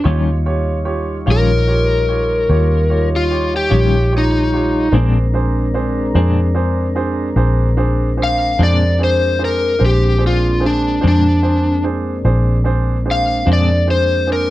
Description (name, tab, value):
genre	blues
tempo	49 BPM (dotted quarters)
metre	12/8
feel	straight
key	Bb mixolydian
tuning	A4 = 440 Hz
part	overdriven slide guitar	melody	0.0-14.5 s	D4 to F5	-16 LUFS	left 2 dB	none
part	warm upright piano	accompaniment	0.0-14.5 s	Ab3 to Db5	-23 LUFS	right 4 dB	none
part	mellow tonewheel organ	sustained chords	0.0-14.5 s	G3 to Db5	-24 LUFS	left 1 dB	slow rotary speaker
part	clean electric guitar	accompaniment	0.1-13.7 s	Bb2 to F4	-21 LUFS	left 5 dB	tremolo
part	vintage muted fingered electric bass	bass	0.1-14.5 s	Bb1 to F2	-16 LUFS	equal	none
room	light reverb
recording	dark, warm production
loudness	-13 LUFS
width	side -16 dB against mid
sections	0.0-14.5 A section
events	none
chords	0.1 Eb9; 4.9 Bb9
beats	| 0.05 1.27 2.49 3.71 | 4.93 6.15 7.37 8.59 | 9.81 11.03 12.25 13.47